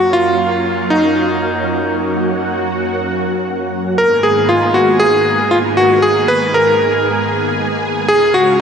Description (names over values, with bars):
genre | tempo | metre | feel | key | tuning
synthwave | 117 BPM | 4/4 | straight | G# dorian | A4 = 439 Hz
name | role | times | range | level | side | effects
bright electric grand piano | melody | 0.0-8.6 s | D#4 to B4 | -13 LUFS | equal | vintage 12-bit sampler grit, shimmer reverb, digital delay
analog string pad | sustained chords | 0.0-8.6 s | C#2 to G#4 | -17 LUFS | right 1 dB | ensemble chorus, shimmer reverb
room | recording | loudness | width
wet concert hall reverb, RT60 1.7 s | big arena sound | -12 LUFS | side -7 dB against mid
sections
0.0-4.0 A section; 4.0-8.6 B section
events
none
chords
0.0 D#m7/F#; 4.0 G#madd9; 8.1 C#